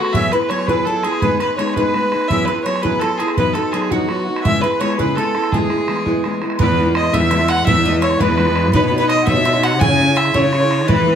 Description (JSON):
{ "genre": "celtic folk, Celtic jig", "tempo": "112 BPM (dotted quarters)", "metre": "6/8", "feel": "straight", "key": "E major", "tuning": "A4 = 440 Hz", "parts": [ { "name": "dark fiddle", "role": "melody", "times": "0.0-11.2 s", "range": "F#4 to G#5", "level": "-19 LUFS", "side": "equal", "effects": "slapback echo, plate reverb" }, { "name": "accordion", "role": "second line", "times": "0.0-11.2 s", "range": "E4 to G#5", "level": "-25 LUFS", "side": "left 1 dB", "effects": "light tremolo tuning" }, { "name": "bowl-back mandolin", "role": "second line", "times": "0.0-11.2 s", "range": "F#4 to G#5", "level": "-26 LUFS", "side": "right 2 dB", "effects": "none" }, { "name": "fingerpicked steel-string acoustic guitar", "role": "accompaniment", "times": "0.0-11.1 s", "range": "C#3 to C#5", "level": "-19 LUFS", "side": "equal", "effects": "none" }, { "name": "bodhran", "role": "percussion", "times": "0.0-11.1 s", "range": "none", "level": "-22 LUFS", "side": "right 2 dB", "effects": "none" }, { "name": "clear cello", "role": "bass", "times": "6.6-11.2 s", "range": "E2 to E3", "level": "-19 LUFS", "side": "equal", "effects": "none" } ], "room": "moderate studio reverb, RT60 0.6 s", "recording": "none", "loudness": "-14 LUFS", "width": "side -8 dB against mid", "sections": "0.0-6.6 A section; 6.6-11.2 B section", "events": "none", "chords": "0.1 Eadd9; 1.2 G#m; 2.3 Eadd9; 3.4 B/E; 4.4 C#m7; 5.5 E; 8.7 Badd9; 9.8 C#m" }